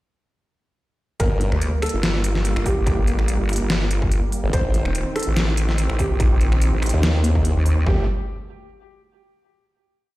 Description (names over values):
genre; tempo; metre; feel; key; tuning
heavy wobble dubstep; 144 BPM; 4/4; swing 55% on 16ths, half-time; G minor; A4 = 440 Hz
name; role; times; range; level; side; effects
felt-muted upright piano; melody; 1.2-8.0 s; G4 to C5; -30 LUFS; right 2 dB; ping-pong delay
supersaw chords; sustained chords; 1.2-8.1 s; Bb2 to C4; -29 LUFS; right 1 dB; sidechain pumping, low-pass filter
formant-sweep wobble bass; bass; 1.2-1.5, 4.4-8.1 s; G1 to Eb2; -19 LUFS; equal; chorus, overdrive
dubstep drum kit; drums; 1.2-7.7 s; finger snaps, hi-hat, snare drum; -26 LUFS; equal; none
electronic kick drum; drums; 1.2-8.0 s; none; -22 LUFS; equal; distortion
vowel-sweep wobble bass; bass; 1.5-7.8 s; Eb1 to Eb2; -20 LUFS; equal; chorus, overdrive
room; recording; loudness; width
digital ambience; played on a big sound system in a bare room, stone room reverb; -18 LUFS; side -18 dB against mid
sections
1.2-7.9 drop; 7.9-9.5 final chord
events
drop 1.2-7.9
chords
1.2 Gmadd9; 4.5 Adim; 7.9 Gmadd9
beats
| 1.20 1.61 2.03 2.45 | 2.87 3.28 3.70 4.12 | 4.53 4.95 5.37 5.78 | 6.20 6.62 7.03 7.45 | 7.87